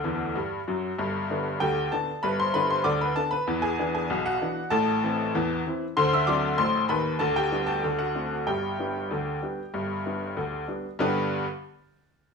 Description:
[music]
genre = ragtime piano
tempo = 96 BPM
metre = 2/4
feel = straight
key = G major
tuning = A4 = 440 Hz
[part]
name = bright upright piano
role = solo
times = 0.0-11.4 s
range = G1 to E6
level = -24 LUFS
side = left 1 dB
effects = none
[sound]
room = moderate studio reverb, RT60 0.8 s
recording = studio reverb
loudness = -24 LUFS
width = side -5 dB against mid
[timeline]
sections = 0.0-11.0 A section; 11.0-12.2 B section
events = upright piano fill 0.0-1.0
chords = 0.0 D; 1.0 G; 3.5 E7; 4.7 Am; 6.0 D7; 7.2 G/D; 7.8 D7; 8.5 G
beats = 0.35 | 0.98 1.60 | 2.23 2.85 | 3.47 4.09 | 4.72 5.34 | 5.96 6.58 | 7.21 7.83 | 8.46 9.09 | 9.72 10.36 | 10.98

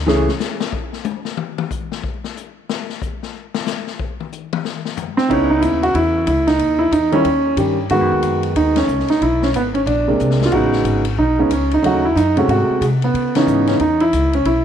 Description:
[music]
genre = jazz piano trio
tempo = 184 BPM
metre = 4/4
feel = swing 62% on 8ths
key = C# minor from 5.3 s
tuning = A4 = 440 Hz
[part]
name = upright bass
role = bass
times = 0.0-0.3, 5.3-14.6 s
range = G#1 to C#3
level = -21 LUFS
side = left 1 dB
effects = none
[part]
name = warm grand piano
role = melody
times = 0.1-0.3, 5.2-14.6 s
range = B#2 to G#4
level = -15 LUFS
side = right 1 dB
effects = tape echo
[part]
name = swinging big-band drum kit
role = drums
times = 0.1-14.5 s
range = crash cymbal, hi-hat, kick drum, ride cymbal, snare drum, toms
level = -26 LUFS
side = left 8 dB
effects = none
[sound]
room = studio reverb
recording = 1960s-style stereo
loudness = -15 LUFS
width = side -9 dB against mid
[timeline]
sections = 0.0-5.3 A section; 5.3-14.6 B section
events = grand piano solo 0.0-5.3; drum solo 0.1-5.3; band accent 8.7, 13.3; drum fill 10.2-10.5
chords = 0.1 N.C.; 5.3 C#m9; 6.6 D#7b9; 7.9 G#m7; 9.2 G#m; 9.9 A#9; 10.5 Amaj9#11; 11.8 D#m7b5; 12.5 G#7b9; 13.1 C#m9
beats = | 0.07 0.40 0.73 1.05 | 1.38 1.71 2.03 2.36 | 2.68 3.01 3.33 3.66 | 3.99 4.31 4.64 4.97 | 5.29 5.62 5.95 6.27 | 6.60 6.93 7.25 7.58 | 7.91 8.24 8.56 8.89 | 9.22 9.54 9.87 10.20 | 10.53 10.85 11.18 11.51 | 11.84 12.16 12.49 12.82 | 13.14 13.47 13.80 14.12 | 14.45

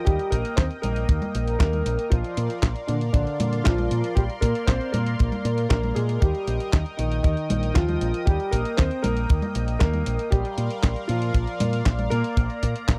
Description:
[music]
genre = italo disco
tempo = 117 BPM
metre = 4/4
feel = straight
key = unclear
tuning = A4 = 440 Hz
[part]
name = warm grand piano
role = melody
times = 0.0-13.0 s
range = D3 to C5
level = -31 LUFS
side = equal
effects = tape echo
[part]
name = warm analog pad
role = sustained chords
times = 0.0-13.0 s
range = Bb4 to Eb6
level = -35 LUFS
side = equal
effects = chorus
[part]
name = fingered electric bass with an envelope filter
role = bass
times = 0.1-13.0 s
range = Bb1 to Bb2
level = -28 LUFS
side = equal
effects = none
[part]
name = dusty soul sampler-style drum kit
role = drums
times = 0.1-13.0 s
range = congas, handclaps, hi-hat, snare drum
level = -32 LUFS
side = equal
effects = none
[part]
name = kick drum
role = drums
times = 0.1-13.0 s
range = none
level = -23 LUFS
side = equal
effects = none
[sound]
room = small room ambience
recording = dry, close 1970s-style studio recording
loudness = -24 LUFS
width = mono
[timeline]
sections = 0.0-13.0 A section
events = none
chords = 0.0 Eb; 2.1 Bbadd9; 6.2 Eb; 10.3 Bbadd9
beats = | 0.06 0.58 1.09 1.60 | 2.12 2.63 3.14 3.65 | 4.17 4.68 5.19 5.71 | 6.22 6.73 7.24 7.76 | 8.27 8.78 9.29 9.81 | 10.32 10.83 11.35 11.86 | 12.37 12.88

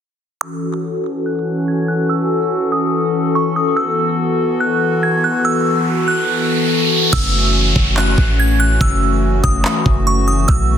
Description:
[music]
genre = hip hop, atmospheric cloud-rap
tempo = 143 BPM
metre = 4/4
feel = half-time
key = F# dorian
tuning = A4 = 440 Hz
[part]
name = delicate synth tine bell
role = melody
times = 0.4-10.8 s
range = C#6 to G#6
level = -20 LUFS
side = right 2 dB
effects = chorus, low-pass filter, tape echo
[part]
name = hollow soft pad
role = sustained chords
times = 0.4-10.8 s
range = E3 to A4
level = -17 LUFS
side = left 2 dB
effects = chorus, sidechain pumping, low-pass filter
[part]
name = riser and downlifter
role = sound effects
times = 5.0-10.5 s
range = none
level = -22 LUFS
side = right 2 dB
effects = none
[part]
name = warm 808-style bass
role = bass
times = 7.1-10.8 s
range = F#1 to B1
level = -16 LUFS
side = equal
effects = none
[part]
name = smooth R&B drum kit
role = drums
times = 7.1-10.6 s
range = crash cymbal, handclaps, kick drum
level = -18 LUFS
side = equal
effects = none
[sound]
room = digital ambience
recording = dense, heavily limited modern master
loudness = -14 LUFS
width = side -9 dB against mid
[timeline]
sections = 0.4-7.1 A section; 7.1-10.8 B section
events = riser 5.0-7.1; hi-hats muted 7.1-10.8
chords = 0.4 F#m7; 3.8 B7sus4; 7.1 F#m7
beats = | 0.41 0.83 1.25 1.67 | 2.09 2.51 2.93 3.35 | 3.77 4.19 4.61 5.03 | 5.45 5.87 6.29 6.71 | 7.13 7.55 7.97 8.39 | 8.81 9.23 9.65 10.07 | 10.48

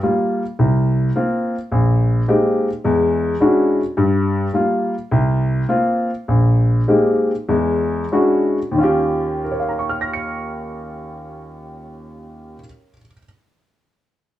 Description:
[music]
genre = jazz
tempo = 90-107 BPM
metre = 4/4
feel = swing 67% on 8ths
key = Eb mixolydian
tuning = A4 = 439 Hz
[part]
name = warm grand piano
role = accompaniment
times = 0.0-13.2 s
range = Bb1 to Db7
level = -16 LUFS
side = equal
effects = none
[sound]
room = wet studio ambience, RT60 0.5 s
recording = band playing live in one room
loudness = -15 LUFS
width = side -13 dB against mid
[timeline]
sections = 0.0-8.8 A section; 8.8-11.4 B section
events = slowing down 4.0-8.8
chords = 0.0 Gm7; 0.6 C7sus4; 1.7 Bb13sus4; 2.8 E13; 4.0 Gm7; 5.1 C7sus4; 6.3 Bb13sus4; 7.5 E13; 8.8 Eb9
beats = 0.03 0.59 1.15 | 1.71 2.27 2.84 3.40 | 3.96 4.53 5.10 5.68 | 6.26 6.87 7.48 8.11 | 8.77 9.43 10.10 10.76

